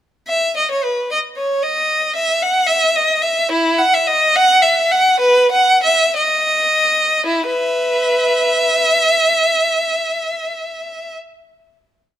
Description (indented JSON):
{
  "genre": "classical, baroque-style suite movement for unaccompanied violin",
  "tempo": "51-78 BPM (dotted quarters)",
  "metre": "6/8",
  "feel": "rubato",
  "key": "unclear",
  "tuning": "A4 = 440 Hz",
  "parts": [
    { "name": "clear violin", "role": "solo", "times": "0.3-11.1 s", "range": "E4 to F#5", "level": "-13 LUFS", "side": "equal", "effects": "none" }
  ],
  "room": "moderate recital hall reverb, RT60 1.4 s",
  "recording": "close, detailed microphones",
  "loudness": "-13 LUFS",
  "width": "side -11 dB against mid",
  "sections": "0.3-7.3 A section; 7.3-11.5 final chord",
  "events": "slowing down 2.7-7.3",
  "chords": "none",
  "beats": "| 0.28 1.10 | 1.89 2.68 | 3.51 4.34 | 5.21 6.16 | 7.26 8.34 | 9.40 10.47"
}